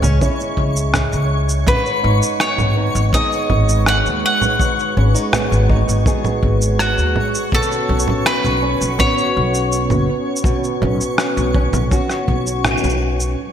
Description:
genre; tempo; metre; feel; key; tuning
folktronica; 82 BPM; 4/4; straight; unclear; A4 = 441 Hz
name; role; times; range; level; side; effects
fingerpicked old ladder-braced acoustic guitar; arpeggios; 0.0-13.5 s; G#2 to G#4; -24 LUFS; equal; vintage 12-bit sampler grit, tape echo
upright bass; bass; 0.0-13.3 s; F#1 to D#2; -18 LUFS; equal; tube saturation
electronic congas, shaker and rim click; drums; 0.0-13.5 s; none; -21 LUFS; right 1 dB; low-pass filter on perc, low-pass filter on snare
twinkling granular texture; texture; 0.0-13.5 s; B4 to C#6; -26 LUFS; left 1 dB; built-in reverb, analog chorus
kick drum; drums; 0.2-12.4 s; none; -20 LUFS; equal; none
bowl-back mandolin; melody; 1.7-12.6 s; F#4 to F#5; -20 LUFS; left 1 dB; tape echo
warm analog pad; sustained chords; 1.7-13.5 s; F#3 to B4; -24 LUFS; right 2 dB; chorus
room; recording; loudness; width
moderate plate reverb, RT60 2.2 s; dreamy mix soaked in reverb; -14 LUFS; side -9 dB against mid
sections
0.0-13.4 A section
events
kick drops out 12.6-13.4; band accent 12.6-13.0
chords
0.0 C#m; 1.7 G#m7; 7.5 Bsus2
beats
0.21 0.94 | 1.67 2.40 3.13 3.87 | 4.60 5.33 6.06 6.79 | 7.53 8.26 8.99 9.72 | 10.45 11.18 11.92 12.65 | 13.38

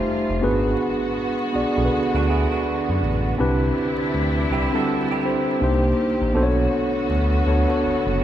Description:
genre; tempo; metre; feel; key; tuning
R&B; 81 BPM; 4/4; swing 62% on 16ths; unclear; A4 = 438 Hz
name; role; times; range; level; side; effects
mellow tine electric piano; accompaniment; 0.0-8.2 s; G3 to E5; -21 LUFS; equal; medium stereo tremolo
warm studio string section; sustained chords; 0.0-8.2 s; D3 to G4; -28 LUFS; equal; none
smooth gliding synth bass; bass; 0.3-8.2 s; F1 to F#2; -24 LUFS; equal; none
electric guitar through a small old amp; second line; 2.2-8.2 s; D4 to A4; -29 LUFS; right 7 dB; none
room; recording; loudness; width
wet church reverb, RT60 2.8 s; recorded in a church or concert hall, vinyl crackle; -19 LUFS; side -11 dB against mid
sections
0.0-8.2 A section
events
none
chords
0.4 G#m7b5; 3.4 Cmaj9; 5.6 Cm7; 6.3 Bm7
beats
| 0.42 1.16 1.90 2.65 | 3.39 4.13 4.87 5.61 | 6.35 7.09 7.83

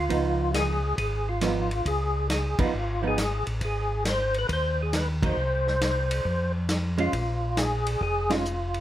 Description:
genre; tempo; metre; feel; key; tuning
soul jazz organ trio; 137 BPM; 4/4; swing 67% on 8ths; unclear; A4 = 440 Hz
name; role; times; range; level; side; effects
percussive tonewheel organ; melody; 0.0-8.8 s; F4 to C5; -28 LUFS; equal; slow rotary speaker, chorus vibrato
mellow tonewheel organ; bass; 0.0-8.8 s; F1 to F2; -28 LUFS; equal; chorus vibrato, slow rotary speaker
hollow-body jazz guitar; accompaniment; 0.1-8.4 s; F3 to F4; -29 LUFS; right 6 dB; none
warm soul drum kit; drums; 0.1-8.8 s; hi-hat, kick drum, ride cymbal, snare drum; -31 LUFS; equal; none
room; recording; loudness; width
moderate club reverb, RT60 0.5 s; none; -24 LUFS; side -12 dB against mid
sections
0.0-8.8 A section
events
band accent 2.5, 5.2, 8.2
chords
0.1 Db9; 3.6 Ab5; 5.4 N.C.; 6.3 Fm; 7.1 Bb7(no3)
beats
| 0.10 0.54 0.98 1.42 | 1.86 2.30 2.74 3.18 | 3.62 4.06 4.50 4.94 | 5.38 5.81 6.25 6.69 | 7.13 7.57 8.01 8.45

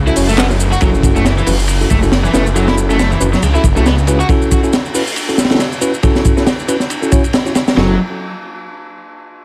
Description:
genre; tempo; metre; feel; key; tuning
breakbeat, breaks; 138 BPM; 4/4; swing 56% on 16ths; F# minor; A4 = 440 Hz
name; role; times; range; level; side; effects
clear studio string section; sustained chords; 0.0-0.8 s; C#3 to A4; -33 LUFS; equal; none
detuned saw bass; bass; 0.0-4.2, 7.8-8.0 s; F#1 to C#2; -17 LUFS; equal; tube saturation
crunchy overdriven guitar; riff; 0.1-4.3, 7.8-8.0 s; E3 to F#4; -22 LUFS; equal; digital delay
bell-like tine electric piano; stabs; 0.1-7.9 s; C#4 to C#5; -20 LUFS; equal; low-pass filter, digital delay
crunchy breakbeat drum kit; drums; 0.1-7.9 s; hi-hat, kick drum, ride cymbal, snare drum; -18 LUFS; equal; none
electronic shaker and handclaps; drums; 0.1-7.8 s; none; -28 LUFS; equal; none
room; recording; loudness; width
little or no reverb; none; -13 LUFS; mono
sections
0.8-7.8 A section; 7.8-9.4 B section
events
none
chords
0.0 F#m7; 7.8 N.C.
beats
0.38 | 0.82 1.25 1.69 2.12 | 2.56 2.99 3.43 3.86 | 4.30 4.73 5.17 5.60 | 6.04 6.47 6.91 7.34 | 7.78

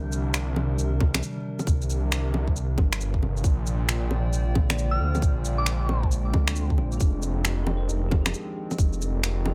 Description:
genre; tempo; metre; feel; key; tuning
future garage; 135 BPM; 4/4; swing 64% on 16ths; C minor; A4 = 436 Hz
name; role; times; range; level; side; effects
bell-like tine electric piano; accompaniment; 0.0-9.5 s; C3 to C5; -37 LUFS; equal; sidechain pumping, dub echo
warbly tape-like pad; sustained chords; 0.0-9.5 s; C3 to G5; -38 LUFS; equal; chorus, built-in reverb, sidechain pumping
swelling detuned saw bass; bass; 0.0-9.5 s; F1 to D2; -28 LUFS; equal; sidechain pumping
electronic shaker, finger snaps and bongos; drums; 0.1-9.5 s; none; -31 LUFS; equal; overdrive, studio reverb
electronic kick drum; drums; 1.0-8.9 s; none; -25 LUFS; equal; studio reverb
soft synth bell; melody; 4.9-6.0 s; D6 to F6; -36 LUFS; equal; chorus, tape echo
room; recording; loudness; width
little or no reverb; none; -25 LUFS; mono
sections
0.0-9.5 A section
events
none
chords
0.0 Cm7; 3.5 Bb13; 7.0 Fm7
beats
0.34 0.79 1.23 | 1.67 2.12 2.56 3.01 | 3.45 3.90 4.34 4.79 | 5.23 5.67 6.12 6.56 | 7.01 7.45 7.90 8.34 | 8.79 9.23

